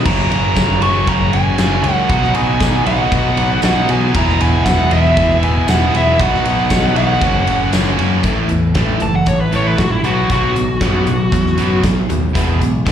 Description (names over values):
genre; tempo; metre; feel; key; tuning
classic rock; 117 BPM; 4/4; straight; unclear; A4 = 440 Hz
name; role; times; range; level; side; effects
picked steel-string acoustic guitar; accompaniment; 0.0-12.9 s; E2 to A4; -26 LUFS; left 1 dB; none
cranked stack guitar; riff; 0.0-12.9 s; E2 to G#4; -20 LUFS; right 9 dB; overdrive, slapback echo
overdriven electric guitar; riff; 0.0-12.9 s; F#2 to E4; -22 LUFS; left 11 dB; slapback echo
bluesy overdriven lead guitar; melody; 0.1-11.8 s; E4 to C#6; -18 LUFS; right 1 dB; distortion, plate reverb, slapback echo
growling picked electric bass; bass; 0.1-12.9 s; E1 to B2; -18 LUFS; equal; overdrive
big rock drum kit; drums; 0.1-12.9 s; crash cymbal, hi-hat, kick drum, ride cymbal, snare drum; -18 LUFS; equal; none
tambourine; percussion; 0.6-7.9 s; none; -33 LUFS; left 6 dB; none
room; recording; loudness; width
light reverb; live gig heard through the venue's PA, club reverb; -12 LUFS; side -9 dB against mid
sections
0.0-8.2 A section; 8.2-12.9 B section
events
lead electric guitar solo 8.2-12.9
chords
0.1 F#; 2.1 B; 4.1 E; 6.2 B; 7.2 F#; 8.2 A; 10.0 Bsus2; 12.4 E